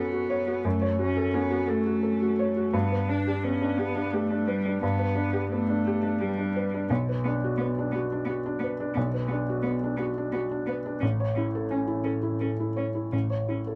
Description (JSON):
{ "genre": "neoclassical piano and strings", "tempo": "86 BPM", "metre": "3/4", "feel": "rubato", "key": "B minor", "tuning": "A4 = 440 Hz", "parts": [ { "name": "rich cello", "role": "second line", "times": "0.0-13.6 s", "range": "G3 to D4", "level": "-32 LUFS", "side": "equal", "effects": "none" }, { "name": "felt-muted upright piano", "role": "accompaniment", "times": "0.0-13.8 s", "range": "A1 to C#5", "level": "-29 LUFS", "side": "equal", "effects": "none" } ], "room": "moderate studio reverb, RT60 0.5 s", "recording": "none", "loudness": "-27 LUFS", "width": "mono", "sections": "0.0-13.8 A section", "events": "none", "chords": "0.0 F#m; 2.7 G; 6.9 Bm; 11.0 A", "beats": "| 0.65 1.34 2.04 | 2.74 3.43 4.12 | 4.82 5.51 6.20 | 6.90 7.59 8.28 | 8.96 9.65 10.33 | 11.02 11.71 12.41 | 13.13" }